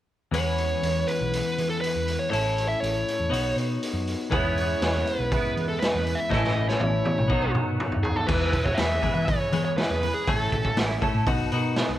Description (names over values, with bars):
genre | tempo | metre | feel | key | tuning
indie rock | 121 BPM | 4/4 | straight | E major | A4 = 438 Hz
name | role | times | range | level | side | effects
bluesy overdriven lead guitar | melody | 0.3-10.8 s | G#4 to E5 | -28 LUFS | right 1 dB | distortion, slapback echo
twelve-string electric guitar | riff | 0.3-12.0 s | E2 to C#5 | -29 LUFS | left 4 dB | none
hollow-body short-scale picked electric bass | bass | 0.3-12.0 s | A1 to E3 | -29 LUFS | equal | none
raw garage drum kit | drums | 0.3-11.9 s | crash cymbal, hi-hat, kick drum, snare drum, toms | -28 LUFS | equal | none
raw garage guitar | riff | 4.3-12.0 s | A2 to B4 | -32 LUFS | right 4 dB | overdrive, ensemble chorus, slapback echo
room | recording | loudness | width
light reverb | worn, warbling old tape, cassette tape, warbly pitch drift | -22 LUFS | side -13 dB against mid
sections
0.3-8.3 A section; 8.3-12.0 B section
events
drum fill 6.3-8.3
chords
0.3 E6; 2.3 A; 3.3 Badd9; 4.3 E6; 6.3 A; 7.3 Badd9; 8.3 E6; 10.3 A; 11.3 B